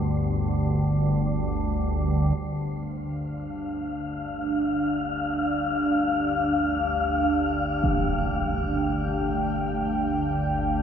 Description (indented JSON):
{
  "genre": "dark ambient drone",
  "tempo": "free time",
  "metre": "none",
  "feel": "none",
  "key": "unclear",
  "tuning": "A4 = 441 Hz",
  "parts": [
    { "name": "organ-like drone", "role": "drone", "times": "0.0-10.8 s", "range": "G1 to D2", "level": "-27 LUFS", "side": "equal", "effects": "ensemble chorus, built-in reverb" },
    { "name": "wind-like tuned noise texture", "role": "texture", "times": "3.4-10.8 s", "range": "C5 to F5", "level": "-29 LUFS", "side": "left 4 dB", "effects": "built-in reverb, shimmer reverb" },
    { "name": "dark analog pad", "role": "sustained chords", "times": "2.4-10.8 s", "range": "D4 to G5", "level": "-27 LUFS", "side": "right 1 dB", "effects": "chorus, phaser, shimmer reverb" },
    { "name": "impact", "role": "percussion", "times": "7.8-8.0 s", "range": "none", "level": "-32 LUFS", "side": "right 1 dB", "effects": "low-pass filter on sfx" }
  ],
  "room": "wet cathedral reverb, RT60 6.4 s",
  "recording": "none",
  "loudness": "-23 LUFS",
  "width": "side -8 dB against mid",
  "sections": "0.0-2.4 A section; 2.4-10.8 B section",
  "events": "fade-in on synth drone 2.4-10.8; fade-in on impacts and reversed cymbals 2.4-10.8; fade-out on analog synth pad 2.4-10.8",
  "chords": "0.0 G5"
}